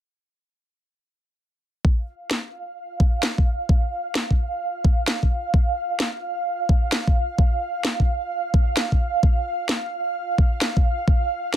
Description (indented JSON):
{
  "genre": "UK garage, two-step garage",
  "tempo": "130 BPM",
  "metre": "4/4",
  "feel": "swing 66% on 16ths",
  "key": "unclear",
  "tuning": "A4 = 441 Hz",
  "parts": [
    { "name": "ethereal airy pad", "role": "sustained chords", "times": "2.6-11.6 s", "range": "F5", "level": "-27 LUFS", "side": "right 3 dB", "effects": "ensemble chorus, built-in reverb, tremolo, sidechain pumping" },
    { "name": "electronic kick drum", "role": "drums", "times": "1.8-11.2 s", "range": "none", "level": "-18 LUFS", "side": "equal", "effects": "none" },
    { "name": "electronic snare drum", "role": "drums", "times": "2.3-11.6 s", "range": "none", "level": "-22 LUFS", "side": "equal", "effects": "none" }
  ],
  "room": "light reverb",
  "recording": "dense, heavily limited modern master",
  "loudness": "-20 LUFS",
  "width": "side -11 dB against mid",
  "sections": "1.8-11.6 A section",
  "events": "filter sweep on ambient pad 1.8-11.6",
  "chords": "none"
}